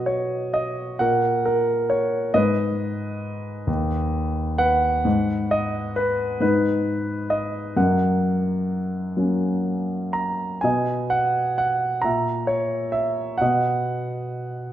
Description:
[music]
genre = classical, lyrical solo piano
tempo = 41-46 BPM (dotted quarters)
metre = 6/8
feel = rubato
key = B major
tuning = A4 = 442 Hz
[part]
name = dark concert grand piano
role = solo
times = 0.0-14.7 s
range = D#2 to A#5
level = -20 LUFS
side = equal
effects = none
[sound]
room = wet recital hall reverb, RT60 1.5 s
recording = minimal, uncompressed stereo recording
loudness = -20 LUFS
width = side -12 dB against mid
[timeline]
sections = 0.0-14.7 A section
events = none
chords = 0.0 B5; 1.0 N.C.; 2.4 G#m; 3.7 B/D#; 5.1 G#m; 7.8 F#; 10.7 B; 12.1 A#dim; 13.4 B

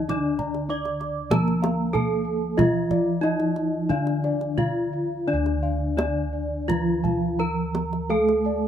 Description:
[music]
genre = Javanese gamelan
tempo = 85-100 BPM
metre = 4/4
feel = straight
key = D pelog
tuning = A4 = 439 Hz
[part]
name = gamelan-type bronze metallophone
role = melody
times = 0.0-8.7 s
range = D4 to D5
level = -27 LUFS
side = left 1 dB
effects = none
[part]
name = gamelan-type bronze metallophone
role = accompaniment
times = 0.0-8.7 s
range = D3 to Bb3-20c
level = -28 LUFS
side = right 2 dB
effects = none
[part]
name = gamelan-type bronze metallophone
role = arpeggios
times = 0.0-8.7 s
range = D5 to D6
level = -35 LUFS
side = right 4 dB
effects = none
[part]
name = gamelan-type bossed gongs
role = bass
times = 0.0-8.7 s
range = D2 to A4-30c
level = -27 LUFS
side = equal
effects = none
[part]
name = gamelan-type bossed gongs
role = arpeggios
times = 0.1-8.7 s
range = D5 to D6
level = -32 LUFS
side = left 4 dB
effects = none
[part]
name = kendang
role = percussion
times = 0.1-8.4 s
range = none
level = -28 LUFS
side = right 1 dB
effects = none
[sound]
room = light reverb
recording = minimal, uncompressed stereo recording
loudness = -22 LUFS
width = side -9 dB against mid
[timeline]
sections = 0.0-5.3 A section; 5.3-8.7 B section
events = none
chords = none

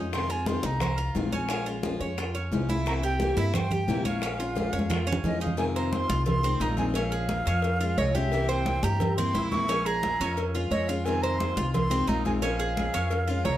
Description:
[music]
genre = latin, Cuban son and guajira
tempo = 176 BPM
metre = 4/4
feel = straight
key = F minor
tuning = A4 = 441 Hz
[part]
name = picked steel-string acoustic guitar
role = accompaniment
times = 0.0-13.6 s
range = C3 to F4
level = -33 LUFS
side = left 3 dB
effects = none
[part]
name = Cuban tres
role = arpeggios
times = 0.0-13.6 s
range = C4 to Db5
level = -32 LUFS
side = right 2 dB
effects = none
[part]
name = upright bass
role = bass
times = 0.0-13.6 s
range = Bb1 to G2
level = -30 LUFS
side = equal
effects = none
[part]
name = silver concert flute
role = melody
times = 0.1-13.6 s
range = Eb5 to Db6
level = -31 LUFS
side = right 1 dB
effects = none
[part]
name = bongos and cowbell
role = percussion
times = 0.1-13.6 s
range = none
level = -35 LUFS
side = left 3 dB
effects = none
[part]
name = congas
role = percussion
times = 0.1-13.6 s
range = none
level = -32 LUFS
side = equal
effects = none
[sound]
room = moderate studio reverb, RT60 0.6 s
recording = none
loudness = -24 LUFS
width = side -12 dB against mid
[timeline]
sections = 0.0-5.6 A section; 5.6-13.6 B section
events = drum fill 4.6-5.6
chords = 0.1 Fm7; 1.5 Bbm7; 2.9 C7; 4.2 Bbm7; 5.6 Fm7; 7.0 Bbm7; 8.3 C7; 9.7 Bbm7; 11.1 Fm7; 12.4 Bbm7

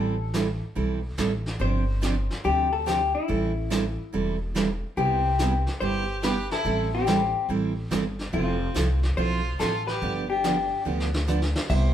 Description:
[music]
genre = country, western swing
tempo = 143 BPM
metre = 4/4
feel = swing 66% on 8ths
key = unclear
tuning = A4 = 440 Hz
[part]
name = vintage hollow-body jazz guitar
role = melody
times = 0.0-11.9 s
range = E4 to E5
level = -28 LUFS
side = left 5 dB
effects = none
[part]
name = picked steel-string acoustic guitar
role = accompaniment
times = 0.0-11.9 s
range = C3 to A4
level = -28 LUFS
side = right 4 dB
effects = none
[part]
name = upright bass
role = bass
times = 0.0-11.9 s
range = E1 to D2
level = -27 LUFS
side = equal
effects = none
[part]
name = vintage brush drum kit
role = drums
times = 0.3-11.9 s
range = brushed snare drum, crash cymbal, hi-hat, kick drum, snare drum, toms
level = -33 LUFS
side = equal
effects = none
[part]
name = clear fiddle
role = second line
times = 5.0-11.9 s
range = C4 to C5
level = -33 LUFS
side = right 2 dB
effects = none
[sound]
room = moderate studio reverb, RT60 0.8 s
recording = band playing live in one room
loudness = -23 LUFS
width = side -10 dB against mid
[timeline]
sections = 0.0-11.9 A section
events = drum fill 10.9-11.7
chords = 0.0 Am7; 1.6 G7sus4; 3.3 Am7; 5.0 Cmaj7; 6.7 Am7; 8.3 Fmaj7; 10.0 G7

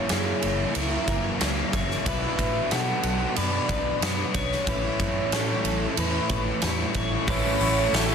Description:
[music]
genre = rock, shoegaze and dream pop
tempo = 92 BPM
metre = 4/4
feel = straight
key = A major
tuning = A4 = 444 Hz
[part]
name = soft octave-layered synth lead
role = melody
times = 0.0-8.1 s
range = C#5 to F#5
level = -31 LUFS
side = equal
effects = chorus, phaser, slapback echo
[part]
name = electric guitar through a small old amp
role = arpeggios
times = 0.0-8.1 s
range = G#4 to C#5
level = -34 LUFS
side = equal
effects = lush chorus, slapback echo
[part]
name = biting overdriven guitar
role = riff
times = 0.0-8.1 s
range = F#2 to E4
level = -30 LUFS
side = left 11 dB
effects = wide subtle chorus
[part]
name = overdriven electric guitar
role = riff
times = 0.0-8.1 s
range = F#2 to E4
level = -31 LUFS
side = right 9 dB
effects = reverse reverb
[part]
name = vintage muted fingered electric bass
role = bass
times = 0.1-8.1 s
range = F#1 to B2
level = -30 LUFS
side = equal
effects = none
[part]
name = huge arena drum kit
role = drums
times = 0.1-8.1 s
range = hi-hat, kick drum, ride cymbal, snare drum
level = -28 LUFS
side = equal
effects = none
[part]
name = phased string machine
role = sustained chords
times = 7.3-8.1 s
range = A4 to C#6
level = -35 LUFS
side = right 2 dB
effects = none
[sound]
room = light reverb, studio reverb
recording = dense, heavily limited modern master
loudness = -22 LUFS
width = side -7 dB against mid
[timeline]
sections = 0.0-7.3 A section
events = none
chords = 0.0 F#7; 2.1 Bm; 4.7 A6

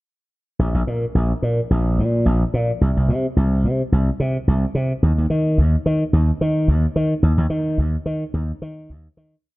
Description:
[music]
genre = disco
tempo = 108 BPM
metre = 4/4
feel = swing 56% on 16ths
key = unclear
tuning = A4 = 441 Hz
[part]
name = slap bass with an envelope filter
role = solo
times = 0.6-9.3 s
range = Bb1 to Eb3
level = -17 LUFS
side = equal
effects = none
[sound]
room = light reverb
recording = dark, warm production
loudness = -17 LUFS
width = side -20 dB against mid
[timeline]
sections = 0.6-9.4 breakdown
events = fade-out 7.2-9.4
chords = none

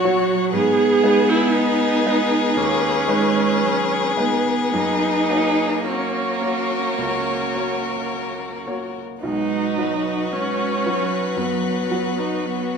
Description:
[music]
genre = classical, slow romantic movement for piano quintet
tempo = 52-61 BPM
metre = 4/4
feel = rubato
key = B major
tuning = A4 = 439 Hz
[part]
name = rich violin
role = melody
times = 0.0-12.8 s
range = A#4 to C#5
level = -26 LUFS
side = left 7 dB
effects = none
[part]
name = rich cello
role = second line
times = 0.0-12.8 s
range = F#3 to B3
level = -26 LUFS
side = right 6 dB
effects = none
[part]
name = rich violin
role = second line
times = 0.0-12.8 s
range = F#4 to G#4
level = -26 LUFS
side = left 3 dB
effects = none
[part]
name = bright baby grand piano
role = accompaniment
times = 0.0-12.8 s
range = A#1 to C#5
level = -26 LUFS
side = equal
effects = none
[part]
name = rich viola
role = accompaniment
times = 0.0-12.8 s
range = B3 to G#4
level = -22 LUFS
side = right 2 dB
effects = none
[sound]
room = moderate recital hall reverb, RT60 1.2 s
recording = minimal, uncompressed stereo recording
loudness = -18 LUFS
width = side -6 dB against mid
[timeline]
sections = 0.0-12.8 A section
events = none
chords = 0.0 F#/A#; 0.5 G#m; 4.7 F#; 9.2 B

